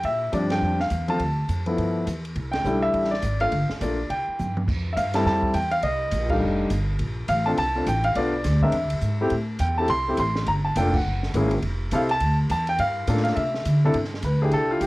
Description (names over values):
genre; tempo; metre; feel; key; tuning
jazz piano trio; 207 BPM; 4/4; swing 60% on 8ths; C major, F major from 4.7 s; A4 = 440 Hz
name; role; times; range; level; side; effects
warm baby grand piano; melody; 0.0-14.9 s; C3 to C6; -23 LUFS; equal; none
upright bass; bass; 0.0-14.9 s; F1 to D3; -25 LUFS; equal; transformer saturation
open jazz drum kit; drums; 0.0-14.9 s; crash cymbal, hi-hat, kick drum, ride cymbal, snare drum, toms; -33 LUFS; right 1 dB; none
room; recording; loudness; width
light reverb; worn, warbling old tape, cassette tape, warbly pitch drift; -21 LUFS; side -20 dB against mid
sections
0.0-4.7 A section; 4.7-13.9 B section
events
band accent 0.5, 2.5, 6.3, 10.9; drum fill 4.4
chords
0.0 Bb6; 1.2 Dm; 1.8 G13; 2.4 C69; 3.5 Gm7; 4.1 C5; 4.7 Fmaj7; 5.8 Cm7; 6.4 F13; 7.0 Bbmaj7sus2; 8.2 Bm7b5; 8.7 E7b13; 9.3 Am7; 10.5 Gm9; 11.1 Gb9; 11.6 Fmaj7; 12.2 Dsus2; 12.8 Gm9; 13.4 Cadd9; 13.9 C69